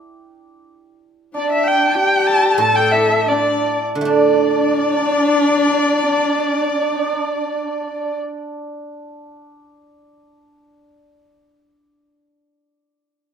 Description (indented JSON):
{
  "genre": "chinese traditional, Chinese chamber ensemble",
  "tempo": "71-104 BPM",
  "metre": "2/4",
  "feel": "straight",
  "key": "unclear",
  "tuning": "A4 = 438 Hz",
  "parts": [
    { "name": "hammered dulcimer", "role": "second line", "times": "0.0-10.9 s", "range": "D4 to A4", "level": "-21 LUFS", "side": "right 3 dB", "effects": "none" },
    { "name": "rich erhu", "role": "second line", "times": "1.3-8.2 s", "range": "D5 to A5", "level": "-23 LUFS", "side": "left 4 dB", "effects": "none" },
    { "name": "dark erhu", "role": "melody", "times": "1.4-8.2 s", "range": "D5 to A5", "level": "-20 LUFS", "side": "right 1 dB", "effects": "none" },
    { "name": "warm horsehead fiddle", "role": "second line", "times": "1.4-8.2 s", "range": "D4 to A4", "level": "-21 LUFS", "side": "left 3 dB", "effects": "none" },
    { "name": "guzheng", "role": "accompaniment", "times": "2.6-10.6 s", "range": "A2 to D4", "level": "-20 LUFS", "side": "right 4 dB", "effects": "none" }
  ],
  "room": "moderate recital hall reverb, RT60 1.4 s",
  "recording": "none",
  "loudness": "-14 LUFS",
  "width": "side -7 dB against mid",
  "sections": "0.0-4.1 A section; 4.1-7.4 B section",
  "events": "slowing down 1.4-4.1",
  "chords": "none",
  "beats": "| 0.19 0.77 | 1.36 1.96 | 2.59 3.28 | 4.07 4.91 | 5.75 6.58"
}